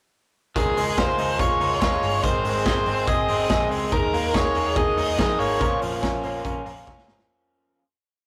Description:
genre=jangly indie pop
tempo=143 BPM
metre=4/4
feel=straight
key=unclear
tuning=A4 = 441 Hz
part: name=biting lead guitar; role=melody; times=0.6-5.8 s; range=Ab4 to Eb5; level=-27 LUFS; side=equal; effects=overdrive, digital delay
part: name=raw garage guitar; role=accompaniment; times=0.6-7.8 s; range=Ab2 to Bb4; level=-32 LUFS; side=equal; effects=overdrive
part: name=direct-recorded clean electric guitar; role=arpeggios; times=0.6-7.8 s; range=Eb3 to Ab4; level=-30 LUFS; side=equal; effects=none
part: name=vintage muted picked electric bass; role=bass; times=0.6-7.3 s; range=G1 to F2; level=-34 LUFS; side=equal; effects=none
part: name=raw garage drum kit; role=drums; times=0.6-7.3 s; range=hi-hat, kick drum, snare drum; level=-28 LUFS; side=equal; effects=none
part: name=reed electric piano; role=accompaniment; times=3.9-7.3 s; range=Db4 to Bb5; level=-32 LUFS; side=equal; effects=none
room=moderate booth ambience, RT60 0.2 s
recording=rough rehearsal-room recording, warm saturation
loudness=-23 LUFS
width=mono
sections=0.6-7.3 pre-chorus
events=fade-out 5.6-7.3; reed electric piano fill 6.0-7.3; drum fill 6.9-7.3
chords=0.6 Dbadd9; 2.2 Ab; 3.9 Ebsus4; 5.6 Bbm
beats=| 0.56 0.98 1.40 1.82 | 2.24 2.66 3.08 3.50 | 3.92 4.34 4.76 5.18 | 5.61 6.03 6.45 6.87

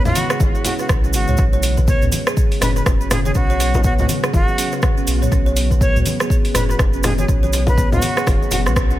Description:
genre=afro house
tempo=122 BPM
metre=4/4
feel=swing 60% on 16ths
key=unclear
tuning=A4 = 437 Hz
part: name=breathy bright jazz flute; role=melody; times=0.0-8.7 s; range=F#4 to C#5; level=-24 LUFS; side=equal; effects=tape echo
part: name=ethereal airy pad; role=sustained chords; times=0.0-9.0 s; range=C#3 to F#4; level=-27 LUFS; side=equal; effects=ensemble chorus, built-in reverb, sidechain pumping
part: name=warm sub bass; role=bass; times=0.1-9.0 s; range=F#1 to E2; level=-20 LUFS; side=equal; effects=sidechain pumping
part: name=afro-pop drum kit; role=drums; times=0.1-8.9 s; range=hi-hat, rim click, toms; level=-23 LUFS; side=right 1 dB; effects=tape echo
part: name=cabasa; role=percussion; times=0.1-9.0 s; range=none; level=-30 LUFS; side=right 4 dB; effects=tape echo
part: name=congas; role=percussion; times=0.1-8.6 s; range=none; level=-27 LUFS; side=left 3 dB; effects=tape echo
part: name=kalimba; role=arpeggios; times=0.3-9.0 s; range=B3 to C#5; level=-25 LUFS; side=right 2 dB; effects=sidechain pumping, tape echo
part: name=electronic kick drum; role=drums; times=0.4-8.9 s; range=none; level=-17 LUFS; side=equal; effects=none
room=studio reverb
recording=echo-heavy mix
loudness=-14 LUFS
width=side -14 dB against mid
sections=0.0-9.0 A section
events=band accent 8.8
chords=0.0 C#m7; 1.4 Bsus2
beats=0.40 0.89 | 1.38 1.88 2.37 2.86 | 3.35 3.84 4.33 4.83 | 5.32 5.81 6.30 6.79 | 7.29 7.78 8.27 8.76

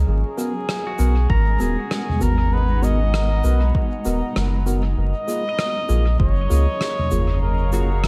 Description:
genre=ambient dub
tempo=98 BPM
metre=4/4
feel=swing 60% on 16ths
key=G# dorian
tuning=A4 = 440 Hz
part: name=granular cloud pad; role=sustained chords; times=0.0-8.1 s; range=F#3 to A#5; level=-32 LUFS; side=equal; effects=built-in reverb
part: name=soft dub sub bass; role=bass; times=0.0-8.1 s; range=D#1 to C#2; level=-21 LUFS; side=equal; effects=none
part: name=trumpet with cup mute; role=melody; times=0.1-8.1 s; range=G#4 to D#5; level=-29 LUFS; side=equal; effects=dub echo
part: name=tine electric piano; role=stabs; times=0.4-7.9 s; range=A#3 to A#4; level=-31 LUFS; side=equal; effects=overdrive, dub echo
part: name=soft-mallet drum kit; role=drums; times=0.4-8.1 s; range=rim click, shaker, toms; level=-29 LUFS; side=equal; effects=dub echo
part: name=pedal steel guitar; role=arpeggios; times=0.9-8.1 s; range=F#4 to A#5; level=-38 LUFS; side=equal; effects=dub echo
part: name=electronic kick drum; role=drums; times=1.3-6.3 s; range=none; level=-23 LUFS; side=equal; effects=none
room=light reverb, small room reverb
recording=vinyl crackle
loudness=-20 LUFS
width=mono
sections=0.1-8.1 A section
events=none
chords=0.1 G#m9; 5.0 F#maj9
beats=| 0.07 0.69 1.30 1.91 | 2.52 3.13 3.75 4.36 | 4.97 5.58 6.20 6.81 | 7.42 8.03

